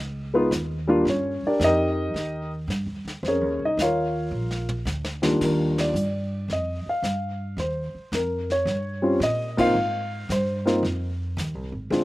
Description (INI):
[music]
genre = jazz piano trio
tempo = 110 BPM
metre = 4/4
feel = swing 68% on 8ths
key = Eb major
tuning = A4 = 441 Hz
[part]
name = upright bass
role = bass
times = 0.0-12.0 s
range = Ab1 to Bb2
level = -29 LUFS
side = right 1 dB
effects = none
[part]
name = dark baby grand piano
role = melody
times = 0.3-12.0 s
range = Eb2 to F5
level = -23 LUFS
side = equal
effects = none
[part]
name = vintage brush drum kit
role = drums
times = 0.5-12.0 s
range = brushed snare drum, crash cymbal, hi-hat, kick drum, ride cymbal, snare drum, toms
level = -34 LUFS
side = equal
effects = none
[sound]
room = little or no reverb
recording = recorded outdoors, with no room sound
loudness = -22 LUFS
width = side -18 dB against mid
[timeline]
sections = 0.0-5.4 A section; 5.4-12.0 B section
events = drum fill 4.3-5.4; band accent 5.7, 9.5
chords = 0.0 Dbadd9; 1.1 Eb; 3.2 Fm7; 4.3 Bb; 5.4 Ebmaj9; 7.6 Eb13; 9.8 Ab6